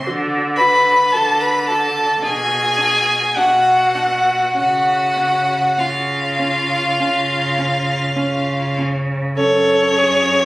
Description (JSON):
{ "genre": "classical, slow romantic movement for string quartet", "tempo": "48-56 BPM", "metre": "4/4", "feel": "rubato", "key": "unclear", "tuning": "A4 = 440 Hz", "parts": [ { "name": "clear violin", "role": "melody", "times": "0.0-10.4 s", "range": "C#5 to B5", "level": "-16 LUFS", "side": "left 1 dB", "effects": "none" }, { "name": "rich violin", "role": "second line", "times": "0.0-10.4 s", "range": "C#4 to B4", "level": "-22 LUFS", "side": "right 1 dB", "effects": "none" }, { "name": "clear viola", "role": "accompaniment", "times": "0.1-10.4 s", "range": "C#4 to A4", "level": "-23 LUFS", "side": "right 2 dB", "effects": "none" }, { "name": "clear cello", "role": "bass", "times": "0.1-10.4 s", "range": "F#2 to D3", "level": "-22 LUFS", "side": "right 1 dB", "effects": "none" } ], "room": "moderate recital hall reverb, RT60 1.5 s", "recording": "recorded on a phone in the room, studio reverb, compression", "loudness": "-14 LUFS", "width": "side -19 dB against mid", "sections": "0.0-9.4 A section; 9.4-10.4 B section", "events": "none", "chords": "0.1 D5; 2.2 B5; 4.6 C#; 9.4 F#5" }